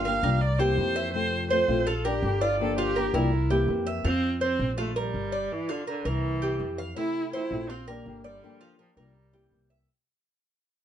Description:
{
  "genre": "latin",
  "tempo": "165 BPM",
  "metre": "4/4",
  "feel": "straight",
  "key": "F major",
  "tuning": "A4 = 440 Hz",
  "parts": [
    { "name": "rich viola", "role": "melody", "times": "0.0-9.7 s", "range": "D3 to F5", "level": "-30 LUFS", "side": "right 2 dB", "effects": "none" },
    { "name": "nylon-string guitar", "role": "accompaniment", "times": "0.0-4.1, 7.0-9.9 s", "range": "C3 to G4", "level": "-32 LUFS", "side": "left 6 dB", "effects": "none" },
    { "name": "Cuban tres", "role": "arpeggios", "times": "0.0-9.9 s", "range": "E4 to F5", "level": "-29 LUFS", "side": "right 2 dB", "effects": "none" },
    { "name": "upright bass", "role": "bass", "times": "0.0-9.8 s", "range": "G1 to F2", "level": "-29 LUFS", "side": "equal", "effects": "none" }
  ],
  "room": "light reverb",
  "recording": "nothing above 10.6 kHz",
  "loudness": "-24 LUFS",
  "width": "side -10 dB against mid",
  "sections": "0.0-4.1 A section; 4.1-9.9 B section",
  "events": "fade-out 4.1-9.9",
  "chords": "0.4 C7; 1.1 Fmaj7; 1.9 Bb6; 2.6 Gm7; 3.3 C7; 4.1 F5; 4.8 Bb6; 5.5 C9; 6.2 C7; 7.0 Fmaj7; 7.7 Bb6; 8.4 Gm7; 9.2 C7",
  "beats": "0.05 0.42 0.78 | 1.14 1.51 1.87 2.23 | 2.60 2.96 3.33 3.69 | 4.05 4.42 4.78 5.14 | 5.51 5.87 6.24 6.60 | 6.97 7.33 7.70 8.06 | 8.43 8.79 9.15 9.52"
}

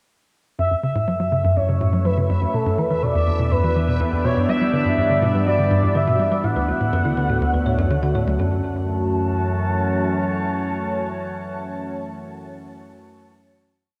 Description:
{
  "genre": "ambient, sequencer-driven space music",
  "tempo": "123 BPM",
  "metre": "4/4",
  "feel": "straight",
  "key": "F# phrygian",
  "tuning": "A4 = 440 Hz",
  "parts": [
    { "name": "expressive portamento lead", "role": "melody", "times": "0.6-12.1 s", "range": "A4 to A5", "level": "-27 LUFS", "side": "equal", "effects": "subtle chorus, shimmer reverb, tape echo" },
    { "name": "evolving wavetable pad", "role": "sustained chords", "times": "1.6-12.4 s", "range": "D3 to D5", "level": "-28 LUFS", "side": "equal", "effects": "chorus, built-in reverb, shimmer reverb" },
    { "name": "thumb-piano-like synth pluck", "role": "arpeggios", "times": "0.6-8.6 s", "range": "F#3 to F#5", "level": "-36 LUFS", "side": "equal", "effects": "chorus, shimmer reverb, tape echo" },
    { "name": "tight sequencer bass", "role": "riff", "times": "0.6-8.6 s", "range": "D2 to G3", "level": "-25 LUFS", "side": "equal", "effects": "lush chorus, tape echo" },
    { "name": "analog drone", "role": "bass", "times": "1.1-9.8 s", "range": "D2 to G2", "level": "-27 LUFS", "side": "equal", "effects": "chorus" },
    { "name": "bubbling stepped-filter texture", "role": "texture", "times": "0.6-8.4 s", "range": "E5", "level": "-37 LUFS", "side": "equal", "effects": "chorus, built-in reverb, shimmer reverb" }
  ],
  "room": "wet spring reverb, RT60 2.5 s",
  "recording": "echo-heavy mix, cassette tape",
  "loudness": "-21 LUFS",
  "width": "mono",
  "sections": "0.6-8.4 A section; 8.4-12.3 final chord",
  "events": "fade-in on synth arpeggio sound 0.6-8.4; filter sweep on analog synth bass 0.6-8.4",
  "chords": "0.6 F#m7; 2.5 Em7; 4.5 G6; 6.4 Dmaj7; 8.4 F#m7",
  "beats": "| 0.58 1.07 1.56 2.05 | 2.54 3.02 3.51 4.00 | 4.49 4.97 5.46 5.95 | 6.44 6.93 7.42 7.90 | 8.39 8.88 9.37 9.85 | 10.34 10.83 11.32 11.80"
}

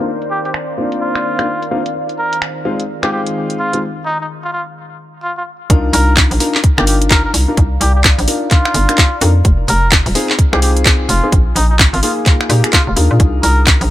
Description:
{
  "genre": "UK garage, two-step garage",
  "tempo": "128 BPM",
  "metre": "4/4",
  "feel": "swing 61% on 16ths",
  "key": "C minor",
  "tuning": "A4 = 440 Hz",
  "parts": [
    { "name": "dark baby grand piano", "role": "stabs", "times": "0.0-13.9 s", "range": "Ab3 to Bb4", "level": "-20 LUFS", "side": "left 2 dB", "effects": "ping-pong delay" },
    { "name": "deep dark ambient pad", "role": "texture", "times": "0.0-13.9 s", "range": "Eb3 to Eb6", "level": "-26 LUFS", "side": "equal", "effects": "chorus, built-in reverb, sidechain pumping" },
    { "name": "garage drum kit", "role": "drums", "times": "0.2-13.9 s", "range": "finger snaps, handclaps, hi-hat", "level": "-15 LUFS", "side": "equal", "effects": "none" },
    { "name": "trumpet with cup mute", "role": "melody", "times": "0.3-13.6 s", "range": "Eb4 to Bb4", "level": "-20 LUFS", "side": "equal", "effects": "ping-pong delay" },
    { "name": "hollow knocking FM bass", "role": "bass", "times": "5.7-13.9 s", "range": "Eb1 to Bb2", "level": "-14 LUFS", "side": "equal", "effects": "tube saturation" },
    { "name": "electronic kick drum", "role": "drums", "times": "5.7-13.8 s", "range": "none", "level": "-12 LUFS", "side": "equal", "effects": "none" }
  ],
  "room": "little or no reverb",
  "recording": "low-pass filter",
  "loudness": "-11 LUFS",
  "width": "side -14 dB against mid",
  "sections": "0.0-5.7 A section; 5.7-13.9 B section",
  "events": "filter sweep 0.0-5.7; break 3.8-5.7; drop 5.7-13.9",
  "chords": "0.0 Cm11; 1.9 Fm7; 3.8 N.C.; 5.7 Cm11; 9.4 Fm7; 11.3 Bb7sus4; 13.2 Cm11",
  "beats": "| 0.07 0.54 1.01 1.48 | 1.95 2.42 2.89 3.35 | 3.82 4.29 4.76 5.23 | 5.70 6.17 6.64 7.11 | 7.57 8.04 8.51 8.98 | 9.45 9.92 10.39 10.86 | 11.32 11.79 12.26 12.73 | 13.20 13.67"
}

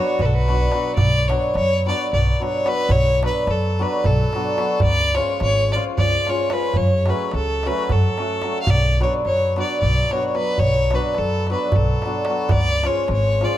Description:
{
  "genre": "balkan folk, Balkan wedding band",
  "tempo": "218 BPM (eighths)",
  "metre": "7/8",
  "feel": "straight",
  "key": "B dorian sharp4",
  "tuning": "A4 = 440 Hz",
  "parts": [
    { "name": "rich fiddle", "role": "melody", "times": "0.0-13.6 s", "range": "A4 to E#5", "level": "-22 LUFS", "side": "equal", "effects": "none" },
    { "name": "rich violin", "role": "second line", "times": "0.0-1.0 s", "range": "F#4", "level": "-30 LUFS", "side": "right 8 dB", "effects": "none" },
    { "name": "hammered dulcimer", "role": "accompaniment", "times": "0.0-13.6 s", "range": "E#3 to F#4", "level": "-24 LUFS", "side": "left 1 dB", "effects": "none" },
    { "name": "upright bass", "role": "bass", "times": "0.2-13.4 s", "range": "G#1 to F#2", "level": "-21 LUFS", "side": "equal", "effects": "none" },
    { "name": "darbuka", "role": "percussion", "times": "0.2-13.5 s", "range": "none", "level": "-23 LUFS", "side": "right 1 dB", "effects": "none" }
  ],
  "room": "light reverb",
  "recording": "close, detailed microphones",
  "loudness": "-17 LUFS",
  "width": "side -12 dB against mid",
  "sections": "1.0-13.6 A section",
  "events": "none",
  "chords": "0.0 Bm; 4.8 C#; 6.7 F#m; 8.7 Bm; 12.5 C#",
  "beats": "0.14 0.41 0.69 | 0.97 1.24 1.52 1.79 2.07 2.35 2.62 | 2.90 3.17 3.45 3.72 4.00 4.27 4.55 | 4.82 5.10 5.37 5.65 5.92 6.20 6.47 | 6.75 7.02 7.30 7.57 7.85 8.12 8.40 | 8.67 8.95 9.22 9.49 9.77 10.04 10.32 | 10.59 10.87 11.14 11.42 11.69 11.96 12.24 | 12.51 12.79 13.06 13.34"
}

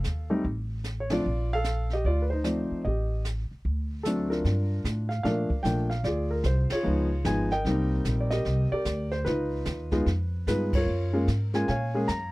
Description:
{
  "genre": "jazz piano trio",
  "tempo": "150 BPM",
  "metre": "4/4",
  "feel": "swing 64% on 8ths",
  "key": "unclear",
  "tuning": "A4 = 437 Hz",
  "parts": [
    { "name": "warm concert grand piano", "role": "melody", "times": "0.0-12.3 s", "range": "F3 to Bb5", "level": "-28 LUFS", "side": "equal", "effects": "none" },
    { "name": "jazz brush drum kit", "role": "drums", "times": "0.0-12.3 s", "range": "brushed snare drum, hi-hat, kick drum, ride cymbal, snare drum", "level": "-34 LUFS", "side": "equal", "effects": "none" },
    { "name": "upright bass", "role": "bass", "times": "0.1-12.3 s", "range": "Ab1 to Bb2", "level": "-28 LUFS", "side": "equal", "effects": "none" }
  ],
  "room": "little or no reverb",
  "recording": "dry, close 1970s-style studio recording",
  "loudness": "-25 LUFS",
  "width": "side -20 dB against mid",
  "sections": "0.0-4.5 A section; 4.5-12.3 B section",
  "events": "band accent 1.0, 6.7, 10.7",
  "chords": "0.0 F7; 1.2 Bbmaj7; 2.8 Gsus2/A; 3.7 D7; 4.5 Gm7; 6.1 Dm7b5; 6.9 Db9; 7.7 Cm9; 9.3 Db9; 10.9 Gbmaj9",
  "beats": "0.04 0.44 0.84 | 1.25 1.65 2.05 2.45 | 2.85 3.25 3.65 4.05 | 4.45 4.85 5.25 5.65 | 6.05 6.46 6.86 7.26 | 7.66 8.06 8.46 8.87 | 9.27 9.67 10.07 10.47 | 10.88 11.28 11.68 12.08"
}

